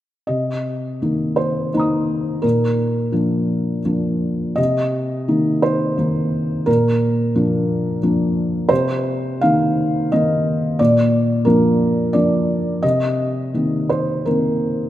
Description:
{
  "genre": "neoclassical minimalist piano",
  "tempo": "79-90 BPM",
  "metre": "3/4",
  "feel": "rubato",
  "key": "C minor",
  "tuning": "A4 = 439 Hz",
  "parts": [
    { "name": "felt-muted upright piano", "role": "solo", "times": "0.3-14.9 s", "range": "Bb2 to Eb6", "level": "-16 LUFS", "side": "equal", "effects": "none" }
  ],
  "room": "wet lush hall reverb, RT60 2.3 s",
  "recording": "rough home demo mix",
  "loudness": "-16 LUFS",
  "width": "side -13 dB against mid",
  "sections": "0.3-14.9 A section",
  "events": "none",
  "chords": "0.3 Cm7; 2.4 Bb; 4.6 Cm7; 6.7 Bb; 8.7 Cm7; 10.8 Bb; 12.8 Cm7",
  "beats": "| 0.28 1.01 1.73 | 2.44 3.14 3.84 | 4.58 5.28 5.98 | 6.68 7.35 8.03 | 8.71 9.43 10.12 | 10.79 11.46 12.14 | 12.83 13.52 14.25"
}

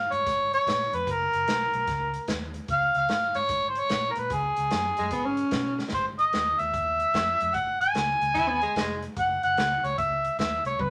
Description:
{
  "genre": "electric blues shuffle",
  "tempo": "148 BPM",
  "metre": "4/4",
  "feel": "swing 64% on 8ths",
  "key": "unclear",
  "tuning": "A4 = 441 Hz",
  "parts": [
    { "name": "mellow harmonica", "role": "melody", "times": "0.0-10.9 s", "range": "Ab4 to Ab5", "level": "-27 LUFS", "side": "equal", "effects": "overdrive" },
    { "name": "vintage muted fingered electric bass", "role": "bass", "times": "0.0-10.9 s", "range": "F1 to Cb3", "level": "-40 LUFS", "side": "equal", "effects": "none" },
    { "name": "swinging big-band drum kit", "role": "drums", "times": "0.1-10.9 s", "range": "hi-hat, kick drum, snare drum, toms", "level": "-36 LUFS", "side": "equal", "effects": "none" },
    { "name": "growling tenor saxophone", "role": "second line", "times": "5.0-5.8, 8.3-9.0 s", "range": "Ab3 to Fb4", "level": "-30 LUFS", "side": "equal", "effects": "none" }
  ],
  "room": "moderate studio reverb, RT60 0.5 s",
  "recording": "none",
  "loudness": "-26 LUFS",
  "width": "mono",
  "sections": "0.0-10.9 A section",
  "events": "drum fill 5.7",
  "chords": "0.0 Db5; 1.1 Gb; 2.7 Db7; 5.9 Ab5; 9.2 Gb5",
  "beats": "0.26 0.66 | 1.07 1.47 1.88 2.28 | 2.69 3.09 3.50 3.90 | 4.31 4.71 5.12 5.52 | 5.93 6.33 6.74 7.14 | 7.55 7.95 8.36 8.76 | 9.17 9.57 9.98 10.38 | 10.79"
}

